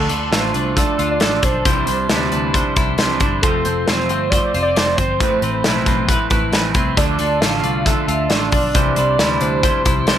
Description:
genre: jangly indie pop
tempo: 135 BPM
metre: 4/4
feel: straight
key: C major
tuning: A4 = 439 Hz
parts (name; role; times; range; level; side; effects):
- warm velvety synth lead; melody; 0.0-10.1 s; A4 to F5; -22 LUFS; right 1 dB; chorus
- electric guitar at the edge of break-up; accompaniment; 0.0-10.2 s; A2 to C5; -21 LUFS; right 5 dB; lush chorus
- twelve-string electric guitar; arpeggios; 0.0-10.2 s; A2 to C5; -23 LUFS; left 6 dB; none
- vintage muted picked electric bass; bass; 0.0-10.2 s; E1 to D2; -24 LUFS; equal; none
- big rock drum kit; drums; 0.1-10.2 s; hi-hat, kick drum, snare drum; -19 LUFS; equal; none
room: light reverb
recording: none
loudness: -14 LUFS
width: side -10 dB against mid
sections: 0.0-10.2 A section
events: none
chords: 0.0 Dm; 1.7 Cadd9; 3.4 F; 5.2 Amadd9; 7.0 Dm; 8.7 Cadd9

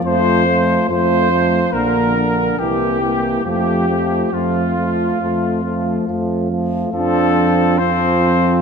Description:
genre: classical, brass quintet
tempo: 69 BPM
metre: 4/4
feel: rubato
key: F major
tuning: A4 = 440 Hz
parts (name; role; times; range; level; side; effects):
- clear trumpet; second line; 0.0-8.6 s; C4 to C5; -21 LUFS; right 8 dB; none
- bright trombone; accompaniment; 0.0-8.6 s; D3 to F3; -21 LUFS; right 4 dB; none
- mellow French horn; accompaniment; 0.0-8.6 s; A3 to D4; -21 LUFS; left 4 dB; none
- warm bass trombone; bass; 0.0-8.6 s; Bb1 to F2; -20 LUFS; right 2 dB; none
- clear cornet; melody; 0.1-8.6 s; F4 to C5; -21 LUFS; left 10 dB; none
room: wet concert hall reverb, RT60 1.8 s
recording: none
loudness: -14 LUFS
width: side -6 dB against mid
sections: 0.0-7.0 A section; 7.0-8.6 A section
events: none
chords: 0.0 F; 1.7 Bb; 2.6 C7; 3.5 F

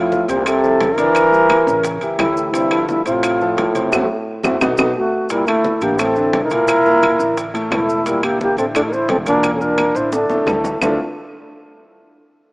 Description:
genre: Afro-Cuban jazz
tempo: 174 BPM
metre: 4/4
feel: straight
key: D minor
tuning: A4 = 444 Hz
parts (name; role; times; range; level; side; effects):
- warm trombone; melody; 0.0-11.0 s; G2 to E4; -19 LUFS; right 1 dB; slapback echo
- breathy mellow concert flute; second line; 0.0-11.0 s; E4 to C5; -17 LUFS; equal; none
- clear concert grand piano; accompaniment; 0.0-11.0 s; A2 to E5; -22 LUFS; equal; none
- upright bass; bass; 0.0-11.0 s; E1 to F2; -31 LUFS; equal; none
- bongos; percussion; 0.1-10.9 s; none; -28 LUFS; left 1 dB; none
- congas; percussion; 0.1-10.9 s; none; -33 LUFS; equal; none
- maracas; percussion; 0.1-10.9 s; none; -38 LUFS; equal; none
- timbales; percussion; 0.1-10.9 s; none; -26 LUFS; right 1 dB; none
- claves; percussion; 0.5-10.9 s; none; -22 LUFS; equal; none
room: moderate lush hall reverb, RT60 2.8 s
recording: rough home demo mix, small speaker sound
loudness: -14 LUFS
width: side -26 dB against mid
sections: 0.0-5.3 A section; 5.3-10.8 B section; 10.8-12.2 C section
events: band accent 3.9-5.3; drum fill 4.4-5.3, 10.1-10.8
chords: 0.0 Fmaj7; 1.2 Em7b5; 1.8 A7; 2.5 Dm9; 3.9 F#m7b5; 4.6 B7; 5.3 Gm69; 6.0 Bbmaj7#11/E; 7.4 Asus4; 8.1 C13/E; 10.1 Asus4; 10.8 Dm9

